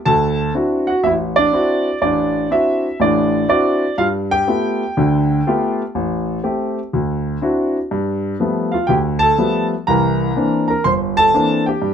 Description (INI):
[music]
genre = solo jazz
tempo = 122 BPM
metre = 4/4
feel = swing 67% on 8ths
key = unclear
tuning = A4 = 440 Hz
[part]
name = warm grand piano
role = solo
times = 0.1-11.9 s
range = G1 to C6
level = -15 LUFS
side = equal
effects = none
[sound]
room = moderate studio reverb, RT60 0.6 s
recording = close, detailed microphones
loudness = -15 LUFS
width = side -8 dB against mid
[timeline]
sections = 0.0-7.9 A section; 7.9-11.9 A section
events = none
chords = 0.1 D9; 4.0 G9; 5.9 Am7; 6.9 D9; 7.9 G9; 9.9 C9